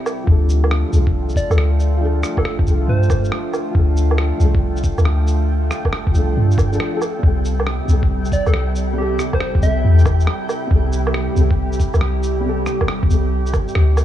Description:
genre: future garage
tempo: 138 BPM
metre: 4/4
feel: swing 66% on 16ths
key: D minor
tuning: A4 = 436 Hz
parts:
  - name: felt-muted upright piano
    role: accompaniment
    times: 0.0-14.0 s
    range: F3 to A4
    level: -26 LUFS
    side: left 2 dB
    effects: sidechain pumping, analog delay
  - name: warbly tape-like pad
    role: sustained chords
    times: 0.0-14.0 s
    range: C3 to A4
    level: -26 LUFS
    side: right 3 dB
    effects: chorus, built-in reverb, sidechain pumping
  - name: electronic shaker, woodblock and rim click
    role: drums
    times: 0.1-14.0 s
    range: none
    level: -26 LUFS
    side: right 2 dB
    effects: studio reverb
  - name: soft 808-style bass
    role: bass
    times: 0.3-14.0 s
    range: G1 to G2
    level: -16 LUFS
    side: equal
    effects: sidechain pumping
  - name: electronic kick drum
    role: drums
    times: 0.3-13.7 s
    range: none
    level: -19 LUFS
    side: equal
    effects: studio reverb
  - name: flickering grainy texture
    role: texture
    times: 0.8-14.0 s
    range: G5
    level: -34 LUFS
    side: right 1 dB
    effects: built-in reverb
  - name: soft struck synth lead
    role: melody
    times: 1.4-3.2, 8.3-10.0 s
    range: G4 to E5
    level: -26 LUFS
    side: right 1 dB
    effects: chorus, cassette tape, tape echo
room: digital ambience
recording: cassette tape, small room ambience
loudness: -15 LUFS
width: side -12 dB against mid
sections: 0.3-14.0 A section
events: none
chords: 0.3 Dm; 7.2 Am7/C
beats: | 0.28 0.71 1.15 1.58 | 2.02 2.45 2.88 3.32 | 3.75 4.19 4.62 5.06 | 5.49 5.93 6.36 6.80 | 7.23 7.67 8.10 8.54 | 8.97 9.41 9.84 10.28 | 10.71 11.15 11.58 12.02 | 12.45 12.88 13.32 13.76

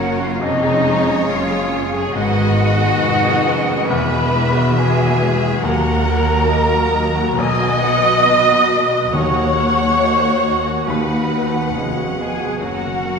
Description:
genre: cinematic, emotional film score for orchestra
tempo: 69 BPM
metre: 4/4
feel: rubato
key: Eb minor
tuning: A4 = 439 Hz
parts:
  - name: rich studio violin section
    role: melody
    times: 0.0-13.2 s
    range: Bb4 to Bb5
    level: -26 LUFS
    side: left 3 dB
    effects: none
  - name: flute section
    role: second line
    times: 0.0-13.2 s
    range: Eb5 to D#6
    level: -20 LUFS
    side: equal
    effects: none
  - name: warm studio violin section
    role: second line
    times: 0.0-13.2 s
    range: Eb4 to D#5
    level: -20 LUFS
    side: equal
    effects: none
  - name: clear baby grand piano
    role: accompaniment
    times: 0.0-13.2 s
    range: B1 to Eb5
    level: -24 LUFS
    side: left 2 dB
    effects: none
  - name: rich studio viola section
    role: accompaniment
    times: 0.0-13.2 s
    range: Gb3 to Cb5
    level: -26 LUFS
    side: right 3 dB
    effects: none
  - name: dark French horn section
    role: sustained chords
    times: 0.0-13.2 s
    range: B2 to F#4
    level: -26 LUFS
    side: equal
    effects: none
  - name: concert harp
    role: arpeggios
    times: 0.0-13.2 s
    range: Gb2 to Eb6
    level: -28 LUFS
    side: left 5 dB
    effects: none
  - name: rich studio cello section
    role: bass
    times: 0.0-13.2 s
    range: Eb2 to B2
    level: -23 LUFS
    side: right 1 dB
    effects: none
  - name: warm studio double bass section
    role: bass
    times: 0.0-13.2 s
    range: E1 to Eb2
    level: -23 LUFS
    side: right 1 dB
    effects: none
  - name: timpani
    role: percussion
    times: 9.1-12.1 s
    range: Eb3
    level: -28 LUFS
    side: left 2 dB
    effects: none
room: wet scoring stage reverb, RT60 1.6 s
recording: heard from further back in the room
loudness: -14 LUFS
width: side -5 dB against mid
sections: 0.0-13.2 A section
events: none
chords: 0.4 Db/F; 2.2 Abm; 3.9 Eadd9; 5.6 Ebm; 7.4 B; 9.1 Ebm; 10.9 B/D#; 12.6 Gb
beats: 0.42 1.29 | 2.15 3.02 3.90 4.77 | 5.63 6.49 7.38 8.25 | 9.12 9.99 10.87 11.75 | 12.61

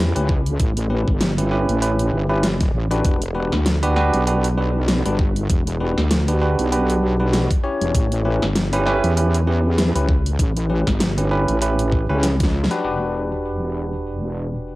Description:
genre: glitch hop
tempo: 98 BPM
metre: 4/4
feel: swing 56% on 16ths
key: E dorian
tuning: A4 = 444 Hz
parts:
  - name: barky tine electric piano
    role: stabs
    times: 0.0-14.8 s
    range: C#4 to C#5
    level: -22 LUFS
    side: right 1 dB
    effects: auto-pan, sidechain pumping, low-pass filter, cassette tape, tape echo
  - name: wobble bass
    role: bass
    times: 0.0-14.8 s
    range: E1 to E2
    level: -20 LUFS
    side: equal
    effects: chorus, tube saturation
  - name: dubstep drum kit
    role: drums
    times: 0.2-12.8 s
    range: hi-hat, snare drum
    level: -23 LUFS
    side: equal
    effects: overdrive
  - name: electronic kick drum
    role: drums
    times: 0.3-12.5 s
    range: none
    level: -19 LUFS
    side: equal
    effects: overdrive
room: light reverb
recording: home recording on cassette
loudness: -17 LUFS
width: side -19 dB against mid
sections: 0.0-12.8 A section; 12.8-14.8 B section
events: drum fill 12.2-12.8; band accent 12.6-12.9; filter sweep on tine electric piano 12.8-14.8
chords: 0.0 A7; 3.0 Em7; 7.9 A7; 12.8 Em7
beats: | 0.60 1.21 1.82 2.44 | 3.05 3.66 4.27 4.88 | 5.50 6.11 6.72 7.33 | 7.95 8.56 9.17 9.78 | 10.39 11.01 11.62 12.23 | 12.84 13.46 14.07 14.68

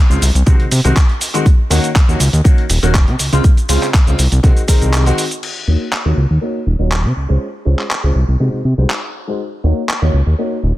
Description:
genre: filtered disco house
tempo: 121 BPM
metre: 4/4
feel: straight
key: Eb dorian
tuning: A4 = 438 Hz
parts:
  - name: bright grand piano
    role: accompaniment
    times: 0.1-10.6 s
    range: Db3 to Db5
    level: -21 LUFS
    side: left 1 dB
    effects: phaser, vintage 12-bit sampler grit, sidechain pumping, low-pass filter
  - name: fat analog bass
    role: bass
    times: 0.1-10.7 s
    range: Eb1 to C3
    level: -13 LUFS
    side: equal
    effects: sidechain pumping, low-pass filter
  - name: dusty soul sampler-style drum kit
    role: drums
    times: 0.1-10.0 s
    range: crash cymbal, handclaps, hi-hat, shaker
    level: -20 LUFS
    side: equal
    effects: sidechain pumping on hats, studio reverb, sidechain pumping on perc, sidechain pumping on cymbals
  - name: electronic kick drum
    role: drums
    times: 0.5-4.8 s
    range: none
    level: -10 LUFS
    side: equal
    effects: studio reverb
room: little or no reverb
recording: dense, heavily limited modern master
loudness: -12 LUFS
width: side -16 dB against mid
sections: 0.0-5.4 A section; 5.4-10.8 B section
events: break 4.9-5.4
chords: 0.2 Ab7/C; 1.5 Ebm7; 3.2 Dbmaj7; 4.2 Ab7/C; 5.4 Ebm7; 7.2 Dbmaj7; 8.2 Ab7/C; 9.4 Ebm7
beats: 0.47 0.96 | 1.46 1.96 2.45 2.95 | 3.44 3.94 4.44 4.93 | 5.43 5.92 6.42 6.92 | 7.41 7.91 8.40 8.90 | 9.39 9.89 10.39

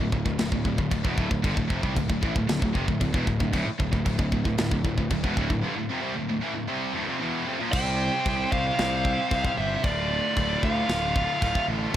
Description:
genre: heavy metal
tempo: 114 BPM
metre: 4/4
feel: straight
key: D minor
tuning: A4 = 440 Hz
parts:
  - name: high-gain distorted guitar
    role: riff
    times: 0.0-12.0 s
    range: D2 to C4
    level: -30 LUFS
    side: equal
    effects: distortion
  - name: scooped high-gain guitar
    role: riff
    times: 0.0-11.9 s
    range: D2 to C5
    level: -30 LUFS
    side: equal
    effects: distortion
  - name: fuzz picked electric bass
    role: bass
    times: 0.0-11.9 s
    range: D1 to D2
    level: -29 LUFS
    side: equal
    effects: overdrive
  - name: tight metal drum kit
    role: drums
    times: 0.1-12.0 s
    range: china cymbal, crash cymbal, kick drum, snare drum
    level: -28 LUFS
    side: equal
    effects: none
  - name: high-gain lead guitar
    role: melody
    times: 7.7-11.6 s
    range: D5 to G5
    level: -27 LUFS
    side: equal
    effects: distortion
room: small room ambience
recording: none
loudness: -23 LUFS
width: side -11 dB against mid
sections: 0.0-7.7 A section; 7.7-12.0 B section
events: break 5.6-7.7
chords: 0.0 Dm; 7.7 C5; 9.8 Dm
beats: 0.39 0.91 | 1.44 1.96 2.49 3.01 | 3.54 4.06 4.59 5.11 | 5.64 6.16 6.69 7.21 | 7.74 8.26 8.79 9.31 | 9.84 10.36 10.89 11.41 | 11.94

